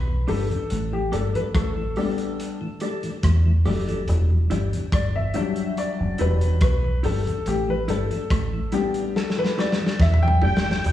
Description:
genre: roots reggae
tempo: 71 BPM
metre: 4/4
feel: straight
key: unclear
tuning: A4 = 439 Hz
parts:
  - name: warm upright piano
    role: stabs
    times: 0.0-10.8 s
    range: F#3 to G5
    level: -26 LUFS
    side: left 4 dB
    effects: plate reverb, slapback echo
  - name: deep dub fingered electric bass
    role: bass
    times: 0.0-10.9 s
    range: E1 to E2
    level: -21 LUFS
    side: equal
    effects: none
  - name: mellow tonewheel organ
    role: accompaniment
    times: 0.1-10.7 s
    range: E2 to D4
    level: -32 LUFS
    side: left 2 dB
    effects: slow rotary speaker, tape echo, plate reverb, slapback echo
  - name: mellow electric guitar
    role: accompaniment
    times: 0.3-10.8 s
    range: D4 to D5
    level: -33 LUFS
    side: right 1 dB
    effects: tape echo, plate reverb, slapback echo
  - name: crunchy breakbeat drum kit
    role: drums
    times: 0.3-10.9 s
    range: hi-hat, kick drum, rim click, snare drum, toms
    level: -26 LUFS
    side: equal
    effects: none
  - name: musette accordion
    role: melody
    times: 10.4-10.9 s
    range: G5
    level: -26 LUFS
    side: right 2 dB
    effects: tape echo, plate reverb, slapback echo
room: light reverb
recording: live gig heard through the venue's PA, recital hall reverb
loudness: -20 LUFS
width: side -12 dB against mid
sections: 0.0-10.8 A section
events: upright piano solo 0.0-10.8; drum fill 9.2-10.8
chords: 0.0 Em7; 0.7 A7sus4; 4.1 Em7; 7.5 A7sus4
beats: | 0.70 1.55 2.39 3.24 | 4.08 4.93 5.77 6.62 | 7.46 8.31 9.15 10.00 | 10.84

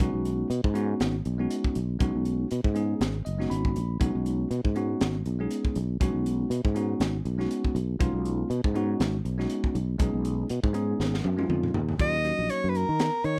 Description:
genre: electric jazz fusion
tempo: 120 BPM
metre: 4/4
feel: swing 56% on 16ths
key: B lydian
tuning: A4 = 441 Hz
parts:
  - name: bell-like tine electric piano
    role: accompaniment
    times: 0.0-12.9 s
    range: F#3 to B5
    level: -32 LUFS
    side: equal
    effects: none
  - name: fretless electric bass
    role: bass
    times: 0.0-13.4 s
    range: F#1 to D#3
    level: -31 LUFS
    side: equal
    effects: none
  - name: crisp fusion drum kit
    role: drums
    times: 0.0-13.4 s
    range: hi-hat, kick drum, snare drum, toms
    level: -32 LUFS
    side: equal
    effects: none
  - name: breathy soprano saxophone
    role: melody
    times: 12.0-13.4 s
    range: A#4 to D#5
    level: -29 LUFS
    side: equal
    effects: slapback echo
room: little or no reverb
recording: none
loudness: -27 LUFS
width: mono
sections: 0.0-12.0 A section; 12.0-13.4 B section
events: tine electric piano fill 3.0-4.0; drum fill 11.0-12.0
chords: 0.0 B69; 12.0 D#m7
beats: | 0.00 0.50 1.00 1.50 | 2.00 2.50 3.00 3.50 | 4.00 4.50 5.01 5.51 | 6.01 6.51 7.01 7.51 | 8.01 8.51 9.00 9.50 | 10.00 10.50 11.00 11.50 | 12.00 12.49 12.99

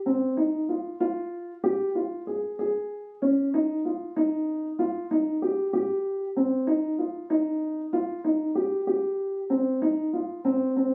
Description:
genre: progressive instrumental, progressive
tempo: 95 BPM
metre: 5/4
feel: straight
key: C phrygian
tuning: A4 = 440 Hz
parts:
  - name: dark baby grand piano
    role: solo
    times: 0.1-10.9 s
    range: C4 to Ab4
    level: -27 LUFS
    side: equal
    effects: none
room: moderate small room reverb, RT60 0.5 s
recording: recorded on a phone in the room, club ambience, nothing above 10.4 kHz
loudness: -27 LUFS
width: mono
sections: 0.0-10.4 A section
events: none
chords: none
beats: 0.38 | 1.00 1.64 2.27 2.89 3.52 | 4.15 4.78 5.41 6.04 6.67 | 7.30 7.93 8.56 9.19 9.81 | 10.44

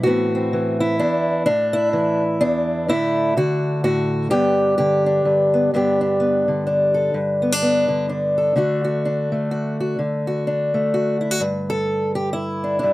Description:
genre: folk, solo fingerstyle acoustic guitar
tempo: 127 BPM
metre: 3/4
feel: swing 59% on 8ths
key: G major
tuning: A4 = 440 Hz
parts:
  - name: fingerpicked acoustic archtop guitar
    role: solo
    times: 0.0-12.9 s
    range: E2 to A4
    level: -17 LUFS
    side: equal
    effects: none
room: little or no reverb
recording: close, detailed microphones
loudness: -17 LUFS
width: side -17 dB against mid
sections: 0.0-5.7 A section; 5.7-11.4 B section; 11.4-12.9 C section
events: none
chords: 0.1 Amadd9; 2.9 Dadd9/A; 4.3 G; 5.7 Gadd9; 8.6 D; 11.4 Gsus2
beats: | 0.07 0.54 1.01 | 1.48 1.95 2.42 | 2.89 3.36 3.83 | 4.30 4.77 5.25 | 5.72 6.19 6.66 | 7.14 7.61 8.09 | 8.56 9.04 9.51 | 9.98 10.46 10.93 | 11.41 11.88 12.36 | 12.83

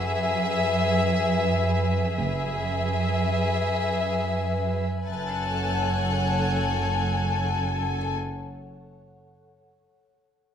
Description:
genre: cinematic, suspense film score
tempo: free time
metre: none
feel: none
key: F# minor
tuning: A4 = 439 Hz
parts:
  - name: rich chamber violin section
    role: second line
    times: 0.0-8.1 s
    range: G#4 to G#5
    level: -27 LUFS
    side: left 4 dB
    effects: none
  - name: evolving wavetable pad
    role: sustained chords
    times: 0.0-8.1 s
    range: A4 to G#5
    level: -30 LUFS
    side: left 2 dB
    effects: chorus, built-in reverb
  - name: dark chamber cello section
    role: bass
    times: 0.0-8.1 s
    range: F#2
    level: -27 LUFS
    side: right 2 dB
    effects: none
  - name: felt-muted upright piano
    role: texture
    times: 0.0-5.1 s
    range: F#5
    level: -44 LUFS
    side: equal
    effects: none
  - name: rich chamber double bass section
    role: bass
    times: 2.2-8.2 s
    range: F#1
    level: -31 LUFS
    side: right 3 dB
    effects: none
  - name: rich chamber violin section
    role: texture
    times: 5.1-7.6 s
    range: F#6 to A6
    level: -36 LUFS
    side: left 1 dB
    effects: none
room: moderate recital hall reverb, RT60 1.4 s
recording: minimal, uncompressed stereo recording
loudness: -23 LUFS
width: side -8 dB against mid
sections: 0.0-5.1 A section; 5.1-8.0 B section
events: none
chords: 0.0 E/F#; 5.1 F#madd9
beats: free time

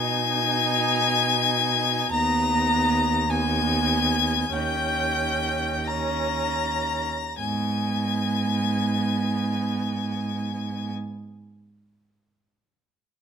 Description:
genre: classical, slow romantic movement for string quartet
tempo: 37-56 BPM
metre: 4/4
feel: rubato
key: G# minor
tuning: A4 = 440 Hz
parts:
  - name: rich violin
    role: melody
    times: 0.0-10.9 s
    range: G6 to A#6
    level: -27 LUFS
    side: left 10 dB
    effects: none
  - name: rich violin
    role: second line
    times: 0.0-10.9 s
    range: G5 to A#5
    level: -28 LUFS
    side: left 3 dB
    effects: none
  - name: rich viola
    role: accompaniment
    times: 0.0-10.9 s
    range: B3 to D#4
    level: -29 LUFS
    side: right 4 dB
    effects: none
  - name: rich cello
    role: bass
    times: 0.0-10.9 s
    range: D#2 to B2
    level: -28 LUFS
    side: right 3 dB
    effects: none
room: light reverb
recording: close, detailed microphones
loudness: -22 LUFS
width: side -7 dB against mid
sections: 0.0-7.4 A section; 7.4-13.0 B section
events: slowing down 0.0-7.4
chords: 0.0 G#m/B; 2.1 G#m/D#; 4.5 D#7; 7.4 G#m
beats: 0.99 | 2.12 3.30 4.53 5.87 | 7.40 8.78 10.17

